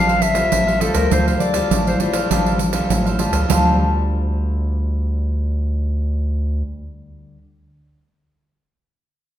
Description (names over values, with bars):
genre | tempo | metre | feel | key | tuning
samba and choro | 101 BPM | 4/4 | straight | D minor | A4 = 440 Hz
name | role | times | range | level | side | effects
warm clarinet | melody | 0.0-2.9 s | A4 to F5 | -20 LUFS | left 3 dB | none
cavaquinho | accompaniment | 0.0-7.4 s | D4 to F5 | -24 LUFS | right 1 dB | none
nylon-string guitar | accompaniment | 0.0-7.4 s | A2 to F4 | -27 LUFS | left 2 dB | none
rubbery square bass | bass | 0.0-6.6 s | A1 to D2 | -20 LUFS | equal | none
pandeiro | percussion | 0.1-3.6 s | none | -20 LUFS | right 2 dB | none
room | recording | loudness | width
wet recital hall reverb, RT60 1.5 s | recorded in a church or concert hall | -16 LUFS | side -11 dB against mid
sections
0.0-3.5 A section; 3.5-5.9 B section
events
none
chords
0.0 Dm11; 3.5 Dm7